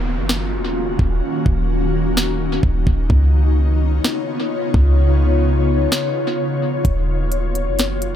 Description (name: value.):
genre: hip hop, atmospheric cloud-rap.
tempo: 128 BPM.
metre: 4/4.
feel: half-time.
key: Eb minor.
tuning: A4 = 442 Hz.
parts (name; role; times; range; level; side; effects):
ethereal airy pad; sustained chords; 0.0-8.2 s; Db3 to Db5; -20 LUFS; left 2 dB; ensemble chorus, built-in reverb, sidechain pumping.
warm 808-style bass; bass; 0.0-8.2 s; Eb1 to Db2; -17 LUFS; equal; none.
downlifter; sound effects; 0.0-3.1 s; none; -34 LUFS; equal; none.
trap drum kit; drums; 0.3-8.1 s; hi-hat, kick drum, snare drum; -19 LUFS; equal; analog delay.
room: little or no reverb.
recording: echo-heavy mix.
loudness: -16 LUFS.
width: side -10 dB against mid.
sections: 0.0-8.2 A section.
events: break 0.0-6.8.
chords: 0.0 Ebm7; 3.1 Db9; 6.8 Ebm7.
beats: 0.29 0.76 | 1.22 1.69 2.16 2.63 | 3.10 3.57 4.04 4.50 | 4.97 5.44 5.91 6.38 | 6.85 7.32 7.79.